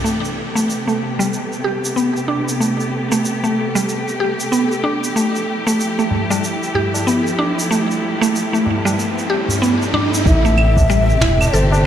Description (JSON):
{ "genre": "organic downtempo", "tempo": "94 BPM", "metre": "4/4", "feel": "swing 60% on 16ths", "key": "A minor", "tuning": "A4 = 440 Hz", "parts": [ { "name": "rich studio string section", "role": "sustained chords", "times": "0.0-11.9 s", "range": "C3 to G4", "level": "-22 LUFS", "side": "equal", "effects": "sidechain pumping, low-pass filter" }, { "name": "mallet-like synth pluck", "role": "arpeggios", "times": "0.0-11.7 s", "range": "G3 to A4", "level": "-18 LUFS", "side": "equal", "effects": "chorus, digital delay" }, { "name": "electronic shaker, claves and finger snaps", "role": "drums", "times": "0.1-11.8 s", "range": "none", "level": "-26 LUFS", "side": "right 2 dB", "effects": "studio reverb" }, { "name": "riser", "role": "sound effects", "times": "7.7-10.3 s", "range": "none", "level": "-26 LUFS", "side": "right 1 dB", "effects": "none" }, { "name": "tabla", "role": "percussion", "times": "5.7-11.8 s", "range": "none", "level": "-24 LUFS", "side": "left 1 dB", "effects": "none" }, { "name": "breathy low ney", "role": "melody", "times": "10.3-11.9 s", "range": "C5 to E5", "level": "-23 LUFS", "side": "left 2 dB", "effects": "tape echo" }, { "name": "smooth synth bass", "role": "bass", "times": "10.3-11.9 s", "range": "E1 to A1", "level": "-15 LUFS", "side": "equal", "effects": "none" }, { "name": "electronic kick drum", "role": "drums", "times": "10.3-11.4 s", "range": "none", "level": "-15 LUFS", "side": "equal", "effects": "studio reverb" } ], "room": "moderate huge ambient reverb, RT60 7.6 s", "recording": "played on a big sound system in a bare room, large studio reverb, lossy compression artefacts", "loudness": "-15 LUFS", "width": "side -10 dB against mid", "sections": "0.0-10.3 A section; 10.3-11.9 B section", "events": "filter sweep on synth pluck 0.0-10.3; filter sweep on string section 0.0-10.3; riser 7.7-10.3", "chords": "0.0 Am9; 5.2 Fmaj9; 10.3 Am7" }